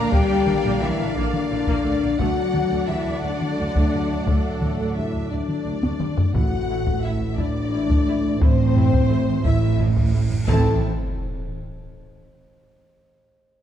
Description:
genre	cinematic, epic orchestral film score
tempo	58 BPM (dotted quarters)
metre	6/8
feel	straight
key	A dorian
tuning	A4 = 440 Hz
part	rich symphonic violin section	melody	0.0-10.9 s	A4 to Bb5	-35 LUFS	left 3 dB	none
part	hollow concert flute	second line	0.0-5.3 s	A4 to Bb5	-34 LUFS	left 1 dB	none
part	rich symphonic violin section	second line	0.0-10.9 s	C5 to A5	-33 LUFS	left 3 dB	none
part	rich symphonic viola section	accompaniment	0.0-10.9 s	G3 to E4	-33 LUFS	right 1 dB	none
part	dark French horn section	sustained chords	0.0-10.8 s	A3 to Bb4	-25 LUFS	left 6 dB	none
part	mellow trombone section	sustained chords	0.0-10.8 s	D3 to C4	-32 LUFS	right 3 dB	none
part	dark symphonic cello section	bass	0.0-10.9 s	A2 to Bb3	-26 LUFS	right 2 dB	none
part	rich symphonic double bass section	bass	0.0-10.9 s	A1 to D2	-27 LUFS	right 4 dB	none
part	taiko ensemble	drums	0.1-11.8 s	none	-23 LUFS	equal	none
part	timpani	percussion	6.3-7.3, 10.5-10.8 s	A2	-30 LUFS	equal	none
part	cymbal swell and sub drop	sound effects	10.0-12.6 s	none	-31 LUFS	equal	none
room	moderate concert hall reverb, RT60 2.1 s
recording	dark, warm production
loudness	-19 LUFS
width	side -10 dB against mid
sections	0.0-6.3 A section; 6.3-10.5 B section; 10.5-12.6 C section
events	drum fill 5.8-6.3; cymbal swell 10.0-10.5; impact 10.5-12.6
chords	0.0 Bb; 2.2 D; 6.3 Am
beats	| 0.12 1.16 | 2.20 3.23 | 4.27 5.31 | 6.34 7.38 | 8.41 9.45 | 10.48 11.52

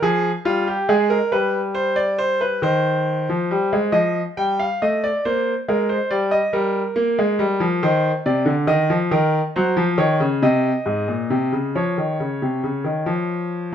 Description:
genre	classical, baroque-style two-part invention for grand piano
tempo	46 BPM (dotted quarters)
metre	6/8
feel	straight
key	F minor, Db major from 9.1 s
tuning	A4 = 441 Hz
part	bright concert grand piano	solo	0.0-13.7 s	Ab2 to G5	-18 LUFS	equal	none
room	light reverb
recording	none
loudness	-18 LUFS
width	side -9 dB against mid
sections	0.0-3.9 A section; 3.9-13.7 B section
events	none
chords	0.0 Fm; 1.3 G; 2.6 Cm/Eb; 3.9 F7; 5.3 Bb; 6.5 Fsus24; 7.8 Cmadd9; 9.1 Ebm; 10.4 Ab; 11.7 Db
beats	0.04 | 1.33 2.63 | 3.94 5.25 | 6.55 7.83 | 9.12 10.43 | 11.75 13.07

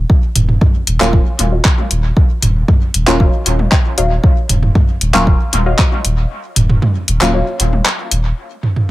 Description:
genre	dub techno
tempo	116 BPM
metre	4/4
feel	straight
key	Eb minor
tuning	A4 = 436 Hz
part	soft dub sub bass	bass	0.0-8.3 s	Eb1	-15 LUFS	equal	tube saturation, sidechain pumping
part	electronic kick drum	drums	0.1-5.9 s	none	-11 LUFS	equal	none
part	deep house drum kit	drums	0.4-8.2 s	handclaps, hi-hat	-17 LUFS	left 1 dB	dub echo
part	electronic toms	percussion	0.4-8.9 s	none	-18 LUFS	right 1 dB	overdrive, sidechain pumping on toms
part	filtered dub chord stab	stabs	1.0-7.4 s	Gb3 to F4	-19 LUFS	equal	chorus, phaser, cassette tape, sidechain pumping, dub echo
part	warbly dusty pluck	riff	1.5-7.5 s	Gb4 to F5	-23 LUFS	left 3 dB	chorus, sidechain pumping, dub echo
room	light reverb, digital ambience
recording	none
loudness	-11 LUFS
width	side -17 dB against mid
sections	0.0-8.4 A section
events	break 6.3-8.4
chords	0.0 Ebm9; 8.4 N.C.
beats	| 0.10 0.61 1.13 1.65 | 2.17 2.68 3.20 3.72 | 4.24 4.75 5.27 5.79 | 6.30 6.82 7.34 7.86 | 8.37

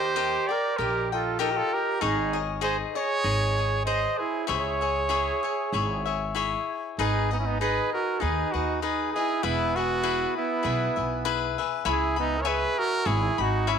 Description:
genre	mexican folk, mariachi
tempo	98 BPM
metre	4/4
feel	swing 53% on 8ths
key	C# harmonic minor, G# minor from 7.0 s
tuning	A4 = 440 Hz
part	clear trumpet	melody	0.0-13.8 s	D#4 to D#5	-28 LUFS	equal	none
part	warm trumpet	second line	0.0-13.8 s	B3 to B#4	-30 LUFS	right 11 dB	none
part	cavaquinho	accompaniment	0.0-13.8 s	D#4 to B5	-29 LUFS	left 10 dB	none
part	upright bass	bass	0.0-13.8 s	E1 to D#2	-31 LUFS	equal	none
room	moderate spring reverb, RT60 2.5 s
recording	1960s-style stereo with parts hard left and right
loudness	-24 LUFS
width	side -7 dB against mid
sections	0.0-7.0 A section; 7.0-13.8 B section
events	none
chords	0.0 D#; 2.0 G#sus4; 3.2 G#; 4.5 C#m; 7.0 G#m; 9.4 E; 11.9 C#m7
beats	0.18 0.80 1.41 | 2.02 2.63 3.25 3.86 | 4.48 5.10 5.72 6.35 | 6.97 7.59 8.20 8.82 | 9.43 10.03 10.64 11.25 | 11.85 12.46 13.06 13.67

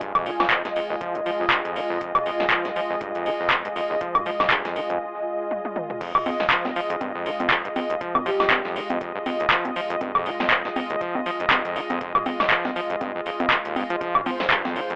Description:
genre	acid house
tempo	120 BPM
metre	4/4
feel	swing 56% on 16ths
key	unclear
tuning	A4 = 440 Hz
part	warm analog pad	sustained chords	0.0-15.0 s	Ab3 to Eb5	-27 LUFS	equal	chorus, sidechain pumping
part	overdriven acid bass	riff	0.0-15.0 s	Eb2 to F3	-29 LUFS	equal	distortion, sidechain pumping, digital delay
part	electro analog drum machine	drums	0.0-15.0 s	congas, crash cymbal, handclaps, hi-hat, snare drum, toms, woodblock	-22 LUFS	equal	overdrive
part	electronic kick drum	drums	0.0-14.6 s	none	-41 LUFS	equal	none
part	granular cloud pad	texture	0.0-5.0 s	F4 to Ab5	-31 LUFS	equal	built-in reverb, sidechain pumping
part	breathy flute-like synth lead	melody	8.3-8.8 s	G4	-30 LUFS	equal	wide subtle chorus, tape echo
room	light reverb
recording	telephone sound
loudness	-21 LUFS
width	side -33 dB against mid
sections	0.0-6.0 A section; 6.0-15.0 B section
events	break 5.0-6.0; drum fill 5.5-6.0; drop 6.0-15.0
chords	0.0 Fm7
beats	| 0.01 0.51 1.01 1.51 | 2.01 2.51 3.01 3.51 | 4.01 4.51 5.01 5.51 | 6.01 6.51 7.01 7.51 | 8.01 8.51 9.01 9.51 | 10.01 10.51 11.01 11.51 | 12.01 12.51 13.01 13.51 | 14.01 14.51

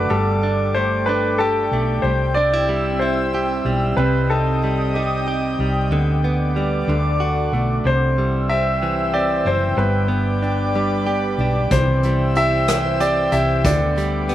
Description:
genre	six-eight pop ballad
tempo	62 BPM (dotted quarters)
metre	6/8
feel	straight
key	unclear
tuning	A4 = 442 Hz
part	bright grand piano	melody	0.0-14.3 s	G4 to E5	-22 LUFS	left 1 dB	slapback echo
part	direct-recorded clean electric guitar	accompaniment	0.0-14.3 s	G2 to G4	-23 LUFS	right 3 dB	spring reverb, slapback echo
part	airy breathy pad	sustained chords	0.0-14.3 s	C4 to E6	-25 LUFS	left 1 dB	chorus
part	picked steel-string acoustic guitar	arpeggios	0.0-14.3 s	E3 to G4	-30 LUFS	left 6 dB	slapback echo
part	hollow-body short-scale fingered electric bass	bass	0.0-14.3 s	F#1 to D2	-22 LUFS	equal	none
part	unplugged drum kit	drums	11.7-14.3 s	hi-hat, kick drum, rim click	-24 LUFS	equal	none
room	little or no reverb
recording	none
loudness	-17 LUFS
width	side -12 dB against mid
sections	0.0-7.8 A section; 7.8-14.3 B section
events	none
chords	0.1 Gsus2; 2.0 C; 4.0 Cm; 5.9 G/D; 6.9 D; 7.8 C; 9.8 G; 11.7 C; 13.6 G/D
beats	| 0.11 1.07 | 2.04 3.01 | 3.98 4.95 | 5.91 6.88 | 7.85 8.82 | 9.78 10.75 | 11.71 12.68 | 13.64

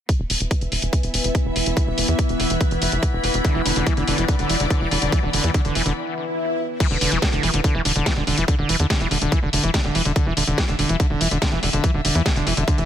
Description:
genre	psychedelic trance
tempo	143 BPM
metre	4/4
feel	straight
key	unclear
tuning	A4 = 440 Hz
part	overtone-sweeping drone	sustained chords	0.5-6.8 s	E3 to B3	-27 LUFS	left 1 dB	chorus, built-in reverb, sidechain pumping
part	electronic kick drum	drums	0.1-12.8 s	none	-20 LUFS	equal	none
part	techno drum kit	drums	0.1-12.9 s	crash cymbal, hi-hat, snare drum	-24 LUFS	left 1 dB	none
part	rich studio string section	texture	0.1-12.9 s	B3 to B5	-32 LUFS	left 3 dB	sidechain pumping
part	tight sequencer bass	bass	0.2-12.8 s	E1 to E2	-24 LUFS	equal	none
part	screaming distorted acid line	riff	3.4-12.9 s	D3 to E3	-24 LUFS	equal	distortion, chorus, auto-pan, vintage 12-bit sampler grit, sidechain pumping, ping-pong delay
part	swell	sound effects	6.1-6.8 s	none	-27 LUFS	left 4 dB	none
room	little or no reverb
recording	none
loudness	-18 LUFS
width	side -10 dB against mid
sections	0.1-6.8 A section; 6.8-12.9 B section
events	fade-in on string section 0.1-6.8; break 6.0-6.8; swell 6.1-6.8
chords	0.1 E5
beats	| 0.09 0.51 0.93 1.35 | 1.77 2.19 2.61 3.03 | 3.45 3.87 4.29 4.71 | 5.12 5.54 5.96 6.38 | 6.80 7.22 7.64 8.06 | 8.48 8.90 9.32 9.74 | 10.16 10.58 11.00 11.42 | 11.84 12.26 12.68

